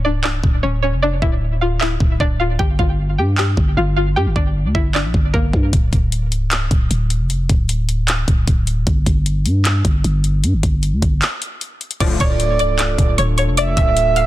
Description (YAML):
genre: hip hop, trap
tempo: 153 BPM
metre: 4/4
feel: half-time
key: D harmonic minor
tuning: A4 = 440 Hz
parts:
  - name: string-like resonator pluck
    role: melody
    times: 0.0-5.5, 12.0-14.3 s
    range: Bb3 to F6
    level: -21 LUFS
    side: left 1 dB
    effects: chorus, low-pass filter, digital delay
  - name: growling 808-style bass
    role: bass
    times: 0.0-14.3 s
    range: C#1 to G2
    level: -18 LUFS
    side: equal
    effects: none
  - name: trap drum kit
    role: drums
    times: 0.2-14.3 s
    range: crash cymbal, handclaps, hi-hat, kick drum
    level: -18 LUFS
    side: equal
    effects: vintage 12-bit sampler grit
  - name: glass harmonica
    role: sustained chords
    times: 12.0-14.3 s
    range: A3 to A4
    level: -26 LUFS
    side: left 1 dB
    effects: stereo widening
  - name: sync-sweep polysynth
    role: stabs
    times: 12.0-12.2 s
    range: A2 to F3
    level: -27 LUFS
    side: left 5 dB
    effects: chorus, digital delay
  - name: breathy flute-like synth lead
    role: second line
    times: 12.2-14.3 s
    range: D5 to E5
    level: -19 LUFS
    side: right 7 dB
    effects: chorus, digital delay
room: digital ambience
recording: dense, heavily limited modern master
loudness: -15 LUFS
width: side -15 dB against mid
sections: 0.0-12.0 A section; 12.0-14.3 B section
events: break 0.0-5.7, 11.2-12.0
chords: 0.0 Dm; 2.6 G5; 5.7 N.C.; 8.9 G5; 12.0 Dm